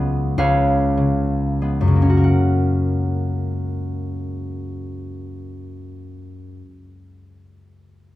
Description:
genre	classical, solo harp piece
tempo	30-38 BPM (dotted quarters)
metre	6/8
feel	rubato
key	F# major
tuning	A4 = 440 Hz
part	concert harp	solo	0.0-7.0 s	C#2 to F#5	-18 LUFS	left 1 dB	none
room	light reverb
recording	close, detailed microphones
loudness	-17 LUFS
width	side -15 dB against mid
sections	0.0-2.2 A section; 2.2-5.8 B section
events	slowing down 0.0-2.2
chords	0.4 C#7; 2.2 F#

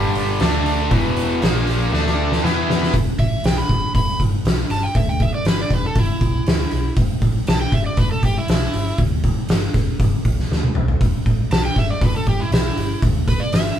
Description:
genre	blues rock power trio and southern rock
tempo	119 BPM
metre	4/4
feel	straight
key	E minor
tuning	A4 = 444 Hz
part	overdriven tonewheel organ	sustained chords	0.0-2.8 s	G3 to E#5	-29 LUFS	right 3 dB	slow rotary speaker, chorus vibrato
part	overdriven electric guitar	riff	0.0-2.9 s	E2 to E4	-20 LUFS	equal	none
part	vintage muted picked electric bass	bass	0.0-13.7 s	E1 to E2	-23 LUFS	equal	none
part	oversized low-tuned drum kit	drums	0.2-13.7 s	hi-hat, kick drum, snare drum, toms	-18 LUFS	equal	none
part	overdriven slide guitar	melody	3.2-13.8 s	E4 to B5	-25 LUFS	right 1 dB	none
room	light reverb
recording	band playing live in one room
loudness	-16 LUFS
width	side -10 dB against mid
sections	0.0-2.9 A section; 2.9-13.8 B section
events	drum fill 1.9-2.9, 10.5-11.0; electric slide guitar solo 2.9-13.8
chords	0.4 D5; 0.9 Em; 1.4 A#5; 1.9 D5; 2.4 Em

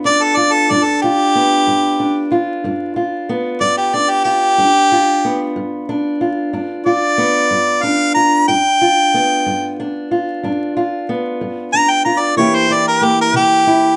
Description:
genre	acoustic country blues, solo or duo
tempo	62 BPM (dotted quarters)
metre	12/8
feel	straight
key	G mixolydian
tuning	A4 = 440 Hz
part	fingerpicked steel-string acoustic guitar	accompaniment	0.0-14.0 s	G2 to G4	-20 LUFS	equal	none
part	bright harmonica	melody	0.1-14.0 s	G4 to Bb5	-15 LUFS	equal	none
room	light reverb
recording	vinyl crackle, nothing above 10.9 kHz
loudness	-15 LUFS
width	mono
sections	0.0-14.0 A section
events	harmonica solo 0.0-14.0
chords	0.0 G7; 12.4 C7

